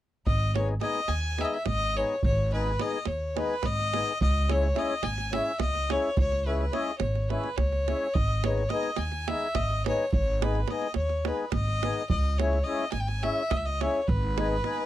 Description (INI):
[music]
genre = balkan folk, Balkan wedding band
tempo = 213 BPM (eighths)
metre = 7/8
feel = straight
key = G# minor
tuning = A4 = 440 Hz
[part]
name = bright violin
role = melody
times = 0.3-14.9 s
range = B4 to G#5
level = -30 LUFS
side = left 1 dB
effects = none
[part]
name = upright bass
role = bass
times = 0.3-14.6 s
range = G#1 to D#2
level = -29 LUFS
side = equal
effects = none
[part]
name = davul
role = percussion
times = 0.3-14.8 s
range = none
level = -31 LUFS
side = right 3 dB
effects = none
[part]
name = mellow accordion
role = accompaniment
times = 0.5-14.8 s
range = G#3 to G#4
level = -31 LUFS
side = left 4 dB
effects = none
[sound]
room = little or no reverb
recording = dry, close 1970s-style studio recording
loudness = -25 LUFS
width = side -13 dB against mid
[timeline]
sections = 0.3-14.9 A section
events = none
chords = 0.3 G#m; 4.2 C#m; 8.2 G#m; 12.1 C#m; 14.1 G#m